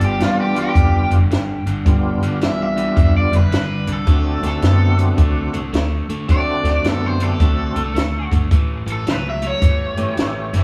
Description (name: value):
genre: electric blues shuffle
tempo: 108 BPM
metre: 4/4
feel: swing 65% on 8ths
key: D mixolydian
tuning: A4 = 441 Hz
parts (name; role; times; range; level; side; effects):
- overdriven electric guitar; melody; 0.0-10.5 s; F4 to E5; -26 LUFS; equal; tape echo
- tonewheel organ; accompaniment; 0.0-10.6 s; G3 to G4; -26 LUFS; equal; slow rotary speaker, overdrive, chorus vibrato
- overdriven electric guitar; riff; 0.0-10.6 s; G2 to B3; -27 LUFS; equal; none
- upright bass; bass; 0.0-10.6 s; F1 to F#2; -22 LUFS; equal; none
- compact cocktail drum kit; drums; 0.0-10.6 s; hi-hat, kick drum, snare drum; -20 LUFS; equal; none
room: moderate stone room reverb, RT60 1.0 s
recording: band playing live in one room, small room ambience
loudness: -18 LUFS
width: mono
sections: 0.0-10.6 A section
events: none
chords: 0.0 G7; 4.1 D7; 8.5 A7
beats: 0.20 0.76 1.31 | 1.86 2.41 2.97 3.52 | 4.07 4.63 5.18 5.73 | 6.29 6.84 7.39 7.95 | 8.50 9.06 9.61 10.17